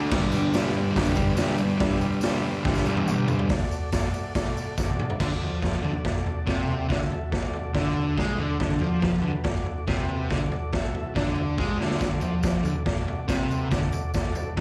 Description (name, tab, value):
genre	garage rock duo or trio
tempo	141 BPM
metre	4/4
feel	straight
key	D major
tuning	A4 = 440 Hz
part	overdriven combo organ	sustained chords	0.0-14.6 s	F#4 to E5	-38 LUFS	equal	lush chorus
part	fuzz guitar	riff	0.0-14.6 s	G2 to D4	-29 LUFS	equal	distortion, slapback echo
part	raw garage drum kit	drums	0.1-14.6 s	crash cymbal, hi-hat, kick drum, snare drum, toms	-28 LUFS	equal	none
part	tambourine	percussion	0.3-4.9, 12.0-14.5 s	none	-47 LUFS	equal	none
room	light reverb, small room ambience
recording	live gig heard through the venue's PA, club reverb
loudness	-26 LUFS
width	mono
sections	0.0-3.5 A section; 3.5-5.2 B section; 5.2-14.6 C section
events	drum fill 2.7-3.5, 4.8-5.2, 11.6-12.0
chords	0.1 G; 3.5 D